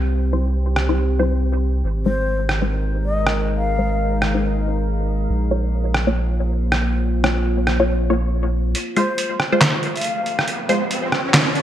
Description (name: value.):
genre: deep dubstep.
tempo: 139 BPM.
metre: 4/4.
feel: swing 59% on 16ths, half-time.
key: F minor.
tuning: A4 = 440 Hz.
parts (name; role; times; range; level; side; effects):
deep dark ambient pad; sustained chords; 0.0-11.6 s; Ab3 to G5; -26 LUFS; left 1 dB; chorus, built-in reverb.
soft dub sub bass; bass; 0.0-8.7 s; Ab1 to C2; -20 LUFS; equal; none.
filtered dub chord stab; stabs; 0.3-10.8 s; G3 to Db5; -23 LUFS; left 1 dB; phaser, cassette tape, dub echo.
trip hop sampler-style drum kit; drums; 0.8-11.6 s; handclaps, hi-hat, rim click, snare drum; -20 LUFS; equal; none.
breathy bright low ney; melody; 2.1-4.2, 9.0-10.4 s; C5 to F5; -27 LUFS; left 3 dB; dub echo.
riser; sound effects; 9.9-11.6 s; none; -27 LUFS; right 1 dB; none.
room: moderate plate reverb, RT60 1.7 s, digital ambience.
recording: bright 1980s-style digital production.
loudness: -17 LUFS.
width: side -11 dB against mid.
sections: 0.0-8.8 A section; 8.8-11.6 B section.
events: build-up 8.8-11.6; filter sweep on ambient pad 8.8-11.6; riser 9.9-11.6.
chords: 0.0 C; 1.8 Ab; 5.3 Bbm; 8.8 Fm.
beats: | 0.12 0.55 0.98 1.41 | 1.84 2.27 2.71 3.14 | 3.57 4.00 4.43 4.87 | 5.30 5.73 6.16 6.59 | 7.02 7.46 7.89 8.32 | 8.75 9.18 9.61 10.04 | 10.48 10.91 11.34.